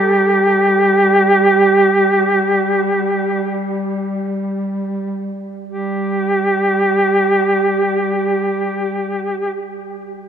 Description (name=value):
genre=caucasian folk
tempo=free time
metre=none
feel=none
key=unclear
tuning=A4 = 440 Hz
part: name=clear duduk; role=melody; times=0.0-9.6 s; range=G4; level=-14 LUFS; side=right 1 dB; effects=none
part: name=mellow duduk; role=drone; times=0.0-9.6 s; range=G3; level=-21 LUFS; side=equal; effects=none
room=wet cathedral reverb, RT60 5.4 s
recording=minimal, uncompressed stereo recording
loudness=-14 LUFS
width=side -8 dB against mid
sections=0.0-5.7 A section; 5.7-9.9 B section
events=slowing down 0.0-5.7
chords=none